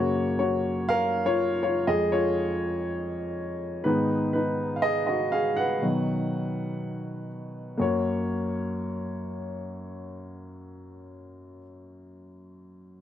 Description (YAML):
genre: pop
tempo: 122 BPM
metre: 4/4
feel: straight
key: F# major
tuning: A4 = 440 Hz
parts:
  - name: warm upright piano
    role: solo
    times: 0.0-13.0 s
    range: E#2 to F#5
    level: -26 LUFS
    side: equal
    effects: none
room: studio ambience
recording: dry, close 1970s-style studio recording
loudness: -25 LUFS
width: side -10 dB against mid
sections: 0.0-7.8 A section; 7.8-11.7 B section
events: upright piano solo 0.0-7.8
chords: 0.0 F#; 1.9 C#/E#; 3.8 G#m; 5.8 B; 7.8 F#